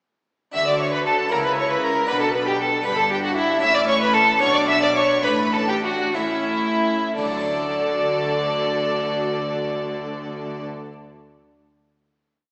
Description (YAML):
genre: classical, baroque-style concerto movement with solo episodes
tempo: 56-78 BPM (dotted quarters)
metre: 6/8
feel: straight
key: D major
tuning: A4 = 441 Hz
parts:
  - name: dark violin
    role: melody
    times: 0.5-10.6 s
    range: E4 to E5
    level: -24 LUFS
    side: equal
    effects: none
  - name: rich chamber violin section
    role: melody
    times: 0.5-10.6 s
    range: D5 to E6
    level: -30 LUFS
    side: equal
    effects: none
  - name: rich studio violin section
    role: second line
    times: 0.5-10.7 s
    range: E4 to E5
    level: -29 LUFS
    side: equal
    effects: none
  - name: harpsichord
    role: accompaniment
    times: 0.5-10.9 s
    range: G2 to A4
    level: -36 LUFS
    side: equal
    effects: none
  - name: rich symphonic viola section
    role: accompaniment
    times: 0.5-10.7 s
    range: C#4 to F#4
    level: -31 LUFS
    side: equal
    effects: none
  - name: rich chamber cello section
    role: bass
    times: 0.5-10.7 s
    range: G2 to D3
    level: -33 LUFS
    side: equal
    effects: none
  - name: clear chamber double bass section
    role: bass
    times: 0.6-10.7 s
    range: G1 to D2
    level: -37 LUFS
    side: equal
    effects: none
room: wet scoring stage reverb, RT60 1.7 s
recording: recorded in a church or concert hall, small speaker sound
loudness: -21 LUFS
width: mono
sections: 0.5-7.2 ritornello; 7.2-11.4 final chord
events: slowing down 2.8-7.2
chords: 0.5 D; 1.3 F#5/C#; 2.1 Bm; 2.8 G5; 3.6 A; 4.4 Bm; 5.3 D5/A; 6.2 A; 7.2 D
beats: | 0.55 1.31 | 2.08 2.85 | 3.62 4.41 | 5.25 6.16 | 7.18 8.24 | 9.31 10.37